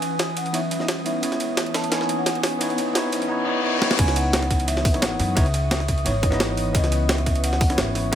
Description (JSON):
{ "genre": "liquid drum and bass", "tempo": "174 BPM", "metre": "4/4", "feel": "straight", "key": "C# minor", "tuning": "A4 = 440 Hz", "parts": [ { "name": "vibraphone with soft mallets", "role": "melody", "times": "0.0-8.2 s", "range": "C#5 to A5", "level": "-28 LUFS", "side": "right 1 dB", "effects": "low-pass filter, tape echo" }, { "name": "glassy FM pad", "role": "sustained chords", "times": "0.0-8.2 s", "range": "E3 to D#6", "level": "-31 LUFS", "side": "left 2 dB", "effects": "ensemble chorus, built-in reverb, sidechain pumping" }, { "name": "breakbeat sampler-style drum kit", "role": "drums", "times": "0.0-8.2 s", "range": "crash cymbal, hi-hat, snare drum", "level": "-27 LUFS", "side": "right 1 dB", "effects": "none" }, { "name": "jungle sampler-style drum kit", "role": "drums", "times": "0.0-8.2 s", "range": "hi-hat, ride cymbal, snare drum", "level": "-28 LUFS", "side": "right 1 dB", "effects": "high-pass filter on cymbals, high-pass filter on snare, high-pass filter on hats" }, { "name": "riser and reverse cymbal", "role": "sound effects", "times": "0.8-4.0 s", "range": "none", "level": "-30 LUFS", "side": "left 3 dB", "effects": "none" }, { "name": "bell-like tine electric piano", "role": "accompaniment", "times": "0.5-8.2 s", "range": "B3 to D#5", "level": "-26 LUFS", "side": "equal", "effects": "tape echo" }, { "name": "upright bass", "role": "bass", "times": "4.0-8.2 s", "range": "G#1 to F#2", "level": "-24 LUFS", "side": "equal", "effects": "tube saturation" }, { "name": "electronic kick drum", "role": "drums", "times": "4.0-8.2 s", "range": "none", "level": "-20 LUFS", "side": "equal", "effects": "overdrive" } ], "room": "light reverb", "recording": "none", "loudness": "-19 LUFS", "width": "side -10 dB against mid", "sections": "0.0-4.0 A section; 4.0-8.2 B section", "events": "build-up 0.0-4.0; reverse cymbal 3.3-4.0; drum fill 3.8; drop 4.0-8.2", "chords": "0.0 C#m9", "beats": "0.20 0.54 0.89 | 1.23 1.57 1.92 2.26 | 2.61 2.95 3.30 3.64 | 3.99 4.33 4.68 5.02 | 5.37 5.71 6.06 6.40 | 6.75 7.09 7.44 7.78 | 8.13" }